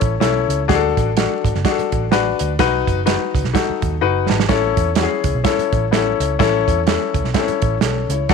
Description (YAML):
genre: uptempo 1960s-style soul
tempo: 126 BPM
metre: 4/4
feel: swing 58% on 8ths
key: A major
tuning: A4 = 443 Hz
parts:
  - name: warm grand piano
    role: accompaniment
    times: 0.0-8.3 s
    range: B3 to A5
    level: -18 LUFS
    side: left 12 dB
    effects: none
  - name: vintage muted picked electric bass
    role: bass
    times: 0.0-8.3 s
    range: F#1 to E2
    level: -22 LUFS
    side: right 2 dB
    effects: none
  - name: warm soul drum kit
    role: drums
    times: 0.0-8.3 s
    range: hi-hat, kick drum, snare drum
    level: -20 LUFS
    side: right 7 dB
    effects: none
room: light reverb, small room ambience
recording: 1960s-style stereo with parts hard left and right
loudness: -15 LUFS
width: side -5 dB against mid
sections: 0.0-8.3 A section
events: grand piano fill 3.8-4.5; drum fill 4.0-4.5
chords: 0.0 A; 0.7 D; 2.6 B; 4.5 A